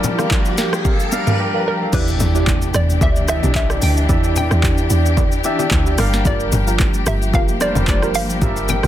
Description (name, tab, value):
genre	amapiano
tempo	111 BPM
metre	4/4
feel	swing 55% on 16ths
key	unclear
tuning	A4 = 437 Hz
part	warm concert grand piano	accompaniment	0.0-8.9 s	E3 to D6	-24 LUFS	equal	none
part	warm studio string section	sustained chords	0.0-8.9 s	E3 to G4	-25 LUFS	left 3 dB	none
part	deep mellow chord stab	stabs	0.0-8.9 s	E4 to F5	-26 LUFS	right 4 dB	chorus, ping-pong delay
part	afro-pop drum kit	drums	0.0-8.9 s	crash cymbal, handclaps, hi-hat, kick drum, rim click, shaker, snare drum, toms	-19 LUFS	equal	none
part	bongos and congas	percussion	0.0-8.8 s	none	-26 LUFS	left 6 dB	none
part	riser and impact	sound effects	0.0-4.1 s	none	-27 LUFS	equal	none
part	hollow square pluck	melody	1.7-8.9 s	Bb4 to G5	-24 LUFS	equal	chorus, ping-pong delay
part	deep log drum bass	bass	1.9-8.9 s	F1 to E2	-18 LUFS	equal	none
room	little or no reverb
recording	dense, heavily limited modern master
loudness	-14 LUFS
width	side -12 dB against mid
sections	0.0-1.9 A section; 1.9-8.9 B section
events	riser 0.0-1.9; grand piano fill 0.8-1.9; drop 1.9-8.9; impact 1.9-4.1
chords	0.0 Gm7; 1.9 Em7; 6.0 Gm7